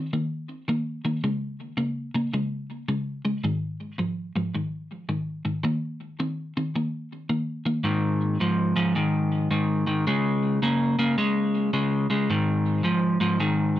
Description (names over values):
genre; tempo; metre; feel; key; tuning
blues; 108 BPM; 4/4; swing 65% on 8ths; Ab major; A4 = 440 Hz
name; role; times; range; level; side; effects
electric guitar at the edge of break-up; solo; 0.0-13.8 s; Ab2 to C4; -23 LUFS; equal; tape echo
room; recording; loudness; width
moderate studio reverb, RT60 0.5 s; nothing above 10.6 kHz; -23 LUFS; side -13 dB against mid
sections
0.0-7.9 A section; 7.9-13.8 B section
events
none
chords
0.0 Eb5; 1.2 Db5; 3.4 Ab5; 5.7 Eb5; 7.9 Ab5; 10.1 Db5; 12.3 Ab5